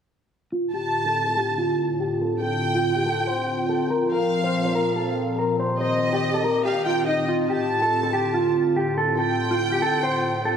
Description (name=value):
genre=hip hop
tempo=142 BPM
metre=4/4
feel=half-time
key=D phrygian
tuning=A4 = 439 Hz
part: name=mellow electric guitar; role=melody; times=0.5-10.6 s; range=Eb4 to C5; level=-24 LUFS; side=equal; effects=low-pass filter, analog delay
part: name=hollow soft pad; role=sustained chords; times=0.5-10.6 s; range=A2 to G4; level=-26 LUFS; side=equal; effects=chorus, low-pass filter
part: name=dark symphonic violin section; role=second line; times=0.7-10.6 s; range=Eb5 to A5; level=-26 LUFS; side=equal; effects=analog delay
room=wet plate reverb, RT60 3.0 s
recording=dreamy mix soaked in reverb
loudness=-20 LUFS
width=side -7 dB against mid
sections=0.5-10.6 A section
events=filter sweep 0.5-10.6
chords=0.5 Dm7; 3.9 Bbsus2; 5.6 Cm7; 7.3 Dm7